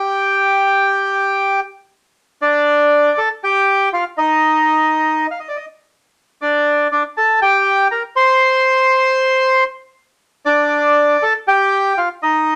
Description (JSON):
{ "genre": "tango", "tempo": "119 BPM", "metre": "4/4", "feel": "rubato", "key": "unclear", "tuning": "A4 = 440 Hz", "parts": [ { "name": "bandoneon", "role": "solo", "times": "0.0-12.6 s", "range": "D4 to C6", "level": "-15 LUFS", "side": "equal", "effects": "none" } ], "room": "moderate studio reverb, RT60 0.6 s", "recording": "none", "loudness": "-15 LUFS", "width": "mono", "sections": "0.0-2.1 A section; 2.1-12.6 B section", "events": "none", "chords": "0.1 N.C.; 2.1 Dmadd11; 4.2 N.C.; 6.2 Gmadd9/D; 8.2 N.C.; 10.2 Dmadd11" }